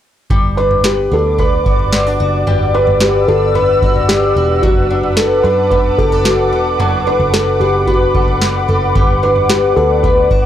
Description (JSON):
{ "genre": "dream pop", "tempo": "111 BPM", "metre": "4/4", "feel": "straight", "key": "G major", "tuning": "A4 = 444 Hz", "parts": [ { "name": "ethereal airy pad", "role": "sustained chords", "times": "1.0-10.5 s", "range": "B4 to E6", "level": "-18 LUFS", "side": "equal", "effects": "ensemble chorus, built-in reverb, tremolo" }, { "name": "picked twelve-string acoustic guitar", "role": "arpeggios", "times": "0.3-10.5 s", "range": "F#3 to A4", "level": "-18 LUFS", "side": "left 4 dB", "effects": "lush chorus, tape echo" }, { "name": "vintage muted picked electric bass", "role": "bass", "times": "0.3-10.5 s", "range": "E1 to F#2", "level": "-18 LUFS", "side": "equal", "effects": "none" }, { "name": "booming analog drum machine", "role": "drums", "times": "0.3-10.5 s", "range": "kick drum, snare drum, toms", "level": "-17 LUFS", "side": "equal", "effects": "none" }, { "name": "felt-muted upright piano", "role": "melody", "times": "0.6-10.5 s", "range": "F#4 to B4", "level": "-15 LUFS", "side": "right 1 dB", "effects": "tape echo" } ], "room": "little or no reverb", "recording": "dry, gritty hardware recording", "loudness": "-10 LUFS", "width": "side -10 dB against mid", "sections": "0.3-10.5 A section", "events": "none", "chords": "0.3 Gmaj7; 4.6 Bm7; 9.0 Gmaj7", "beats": "| 0.30 0.85 1.39 1.93 | 2.47 3.01 3.55 4.09 | 4.63 5.17 5.71 6.25 | 6.79 7.33 7.87 8.41 | 8.95 9.49 10.04" }